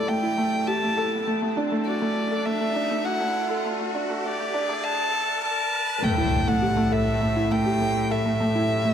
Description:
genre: piano and strings electronica.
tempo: 101 BPM.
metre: 4/4.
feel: straight.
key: unclear.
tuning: A4 = 440 Hz.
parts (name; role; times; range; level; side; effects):
dark violin; melody; 0.0-8.9 s; D5 to A5; -26 LUFS; equal; ping-pong delay.
felt-muted upright piano; riff; 0.0-8.9 s; A3 to A4; -25 LUFS; right 1 dB; ping-pong delay.
riser and impact; sound effects; 0.0-8.4 s; none; -31 LUFS; left 1 dB; none.
rich chamber cello section; bass; 6.0-8.9 s; A2; -27 LUFS; left 2 dB; none.
room: moderate huge ambient reverb, RT60 6.4 s.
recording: high-pass filter.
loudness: -22 LUFS.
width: side -8 dB against mid.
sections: 0.0-6.0 A section; 6.0-8.9 B section.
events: build-up 0.0-6.0; riser 0.0-6.0; filter sweep 0.0-6.0; drop 6.0-8.9; impact 6.0-8.4.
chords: 0.0 A7(no3); 1.3 Asus4; 6.0 A5.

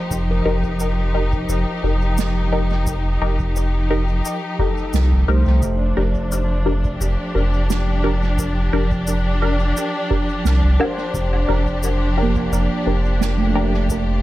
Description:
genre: ambient dub.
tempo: 87 BPM.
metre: 4/4.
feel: swing 54% on 16ths.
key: unclear.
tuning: A4 = 440 Hz.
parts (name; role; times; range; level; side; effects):
rich symphonic string section; sustained chords; 0.0-14.2 s; F3 to G4; -24 LUFS; left 1 dB; none.
handpan; arpeggios; 0.0-14.2 s; A3 to C5; -28 LUFS; right 2 dB; dub echo.
soft dub sub bass; bass; 0.1-14.2 s; F1 to C2; -19 LUFS; equal; tube saturation.
cabasa, snare drum and woodblock; drums; 0.1-14.0 s; none; -29 LUFS; right 5 dB; dub echo.
electronic kick drum; drums; 0.1-14.1 s; none; -27 LUFS; equal; none.
filtered dub chord stab; stabs; 0.5-13.8 s; D4 to Bb4; -26 LUFS; left 1 dB; phaser, dub echo.
room: light reverb.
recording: none.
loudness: -17 LUFS.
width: side -16 dB against mid.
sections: 0.0-14.2 A section.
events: none.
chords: 0.0 F9sus4; 5.6 Gm/F.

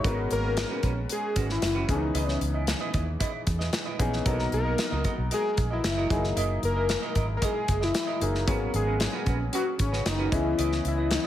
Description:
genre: polished 1980s jazz-funk pop.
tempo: 114 BPM.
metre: 4/4.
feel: straight.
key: unclear.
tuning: A4 = 444 Hz.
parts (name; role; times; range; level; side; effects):
clear baby grand piano; accompaniment; 0.0-11.3 s; E3 to D#5; -32 LUFS; left 2 dB; lush chorus.
semi-hollow electric guitar; riff; 0.0-11.3 s; C#4 to D#5; -36 LUFS; right 6 dB; lush chorus.
vintage muted fingered electric bass; bass; 0.0-11.2 s; F#1 to E2; -29 LUFS; right 1 dB; none.
modern studio drum kit; drums; 0.0-11.2 s; hi-hat, kick drum, snare drum; -30 LUFS; equal; gated reverb.
fat analog lead; melody; 0.3-11.3 s; C#4 to A#4; -30 LUFS; left 2 dB; phaser, tape echo.
room: light reverb, small room ambience.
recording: none.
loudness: -24 LUFS.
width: side -12 dB against mid.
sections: 0.0-11.3 A section.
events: none.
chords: 0.0 G#m11; 1.9 C#m9; 4.3 Bmaj7; 6.1 F#13; 8.5 G#m11; 10.3 C#m9.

